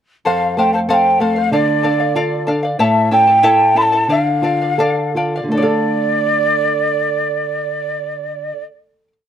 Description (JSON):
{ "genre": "andean folk, Andean ensemble", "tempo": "76-95 BPM", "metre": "2/4", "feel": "straight", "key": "D minor", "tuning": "A4 = 443 Hz", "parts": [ { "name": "breathy mellow quena", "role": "melody", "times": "0.3-8.6 s", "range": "D5 to B5", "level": "-15 LUFS", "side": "right 1 dB", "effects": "none" }, { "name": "charango", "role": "accompaniment", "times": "0.3-9.1 s", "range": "E4 to A5", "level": "-19 LUFS", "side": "left 3 dB", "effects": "slapback echo" }, { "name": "nylon-string guitar", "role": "accompaniment", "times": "0.3-8.7 s", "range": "F2 to A4", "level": "-20 LUFS", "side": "right 1 dB", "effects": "none" } ], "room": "little or no reverb", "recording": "recorded outdoors, with no room sound", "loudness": "-13 LUFS", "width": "side -9 dB against mid", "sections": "0.3-5.5 A section; 5.5-8.7 final chord", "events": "slowing down 2.8-5.5", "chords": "0.3 F; 1.5 Dm; 2.8 A; 4.1 Dm" }